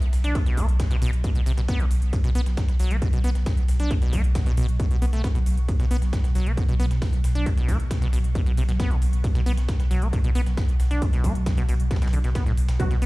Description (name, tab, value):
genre	driving peak-time techno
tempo	135 BPM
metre	4/4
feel	straight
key	unclear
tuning	A4 = 439 Hz
part	swarming drone	drone	0.8-13.1 s	B2 to F#3	-32 LUFS	right 1 dB	built-in reverb, sidechain pumping
part	electronic hi-hat	drums	0.0-13.1 s	none	-44 LUFS	right 1 dB	sidechain pumping on hats, sidechain pumping on cymbals
part	saturated sub bass	bass	0.1-13.1 s	B1	-23 LUFS	equal	sidechain pumping, low-pass filter
part	breakbeat sampler-style drum kit	drums	0.1-13.1 s	hi-hat, ride cymbal, snare drum	-43 LUFS	right 1 dB	sidechain pumping on cymbals, high-pass filter on cymbals, high-pass filter on snare, sidechain pumping on hats, high-pass filter on hats
part	acid bass, saw	riff	0.2-13.1 s	A2 to D4	-31 LUFS	equal	sidechain pumping, tape echo
part	electronic kick drum	drums	0.4-12.9 s	none	-23 LUFS	equal	none
part	rave stab	stabs	12.8-12.9 s	B2 to F#4	-26 LUFS	right 1 dB	chorus, built-in reverb, sidechain pumping
room	little or no reverb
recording	played on a big sound system in a bare room, large studio reverb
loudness	-20 LUFS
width	side -20 dB against mid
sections	0.0-13.1 A section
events	none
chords	0.0 B5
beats	| 0.35 0.80 1.24 1.69 | 2.13 2.57 3.02 3.46 | 3.91 4.35 4.80 5.24 | 5.69 6.13 6.57 7.02 | 7.46 7.91 8.35 8.80 | 9.24 9.69 10.13 10.57 | 11.02 11.46 11.91 12.35 | 12.80